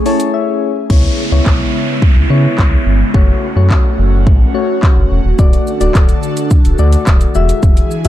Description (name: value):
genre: dance-pop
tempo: 107 BPM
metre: 4/4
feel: straight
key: unclear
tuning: A4 = 440 Hz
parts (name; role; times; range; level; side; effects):
- airy breathy pad; sustained chords; 0.0-8.1 s; C#3 to A4; -19 LUFS; right 2 dB; chorus, phaser, sidechain pumping
- soft electric-piano-like synth keys; accompaniment; 0.1-8.1 s; G#3 to A5; -19 LUFS; left 7 dB; chorus, sidechain pumping
- pop drum kit; drums; 0.1-8.1 s; crash cymbal, handclaps, hi-hat, kick drum, shaker; -11 LUFS; equal; none
- sub bass with octave; bass; 0.9-8.1 s; D1 to C#3; -12 LUFS; equal; sidechain pumping
- downlifter; sound effects; 0.9-5.4 s; none; -25 LUFS; right 1 dB; none
room: little or no reverb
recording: dark, warm production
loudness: -9 LUFS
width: side -13 dB against mid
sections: 0.9-8.1 A section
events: synth keys fill 0.0-0.9; break 0.3-0.9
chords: 0.0 Amaj7; 0.9 C#m7; 3.1 F#m; 5.4 D; 7.3 Eadd9